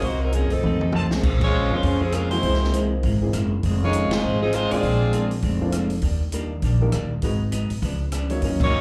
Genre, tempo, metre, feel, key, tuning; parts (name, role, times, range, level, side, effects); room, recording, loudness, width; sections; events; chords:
jazz, big band swing; 200 BPM; 4/4; swing 60% on 8ths; Bb minor; A4 = 441 Hz
warm saxophone section; melody; 0.0-5.3, 8.6-8.8 s; F3 to D5; -27 LUFS; equal; slapback echo
vintage hollow-body jazz guitar; accompaniment; 0.0-8.8 s; F2 to C5; -32 LUFS; equal; slapback echo
upright bass; bass; 0.0-8.8 s; F1 to C3; -26 LUFS; equal
open jazz drum kit; drums; 0.0-8.7 s; crash cymbal, hi-hat, kick drum, ride cymbal, rim click, snare drum, toms; -30 LUFS; equal
clear trombone section; second line; 0.5-5.3, 8.6-8.8 s; C3 to D4; -31 LUFS; equal; slapback echo
warm upright piano; accompaniment; 0.5-8.8 s; E3 to Eb5; -32 LUFS; equal; slapback echo
bright trumpet section; stabs; 0.9-1.1 s; F4 to A5; -33 LUFS; equal; slapback echo
little or no reverb; live gig heard through the venue's PA, club reverb; -22 LUFS; mono
0.0-1.2 A section; 1.2-8.8 B section
drum fill 0.6-1.2; band accent 1.4, 4.1, 8.6
0.0 Cm7b5; 0.6 F7; 1.2 Bbm9; 2.4 C7alt; 3.6 Fm7; 4.8 Bb9; 6.0 Ebmaj7; 7.2 Abm7; 7.8 Db7b9